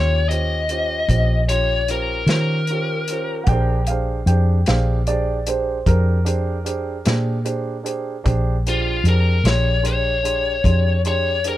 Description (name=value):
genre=slow blues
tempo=50 BPM (dotted quarters)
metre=12/8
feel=straight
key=Bb mixolydian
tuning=A4 = 440 Hz
part: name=biting lead guitar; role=melody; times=0.0-11.6 s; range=F4 to Eb5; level=-21 LUFS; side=left 3 dB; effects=overdrive
part: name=warm grand piano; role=accompaniment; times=0.0-11.6 s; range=Db4 to C6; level=-27 LUFS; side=right 5 dB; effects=none
part: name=vintage muted fingered electric bass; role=bass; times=0.0-11.6 s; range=Bb1 to Eb3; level=-19 LUFS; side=equal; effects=none
part: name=warm soul drum kit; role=drums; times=0.3-11.6 s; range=hi-hat, kick drum, snare drum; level=-22 LUFS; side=equal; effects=none
part: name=dark upright piano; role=second line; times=3.4-8.2 s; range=Bb4 to G5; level=-27 LUFS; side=right 3 dB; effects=none
room=little or no reverb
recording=dark, warm production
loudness=-17 LUFS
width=side -14 dB against mid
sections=0.0-11.6 A section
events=none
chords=0.0 Eb13; 3.5 Bb13